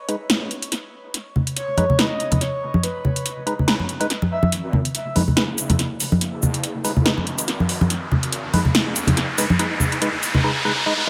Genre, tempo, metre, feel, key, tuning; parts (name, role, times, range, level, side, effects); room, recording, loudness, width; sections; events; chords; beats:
deep dubstep; 142 BPM; 4/4; swing 55% on 16ths, half-time; G# minor; A4 = 440 Hz
percussive organ stab; stabs; 0.1-11.1 s; G#3 to B4; -29 LUFS; equal; chorus, dub echo
deep house drum kit; drums; 0.1-10.3 s; hi-hat, shaker, snare drum; -25 LUFS; equal; overdrive, tape echo
congas; percussion; 1.4-10.4 s; -23 LUFS; equal; dub echo
breathy flute-like synth lead; melody; 1.6-4.5 s; B4 to E5; -31 LUFS; equal; tremolo, subtle chorus, dub echo
wobble bass; bass; 4.5-10.4 s; F#1 to G#1; -34 LUFS; equal; chorus, high-pass filter
riser; sound effects; 6.2-11.1 s; -28 LUFS; equal
light reverb; echo-heavy mix; -21 LUFS; mono
0.0-4.5 A section; 4.5-11.1 B section
filter sweep on synth stab 0.0-4.5, 4.5-11.1; build-up 4.5-11.1; riser 6.2-11.1
0.0 G#m
0.30 0.72 | 1.14 1.56 1.99 2.41 | 2.83 3.25 3.68 4.10 | 4.52 4.95 5.37 5.79 | 6.21 6.64 7.06 7.48 | 7.90 8.33 8.75 9.17 | 9.59 10.02 10.44 10.86